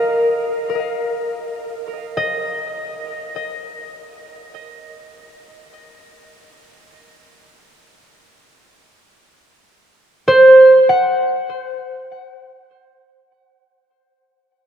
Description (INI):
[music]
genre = ambient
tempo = free time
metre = none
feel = none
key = Ab mixolydian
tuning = A4 = 440 Hz
[part]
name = concert harp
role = arpeggios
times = 0.0-13.9 s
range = Bb4 to Gb5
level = -14 LUFS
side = right 1 dB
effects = ping-pong delay
[sound]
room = moderate huge ambient reverb, RT60 8.8 s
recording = cassette tape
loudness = -13 LUFS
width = side -9 dB against mid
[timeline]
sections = 0.0-13.3 A section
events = fade-in on harp 0.0-13.3; fade-out 6.9-13.3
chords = 0.0 Ab13 (rootless)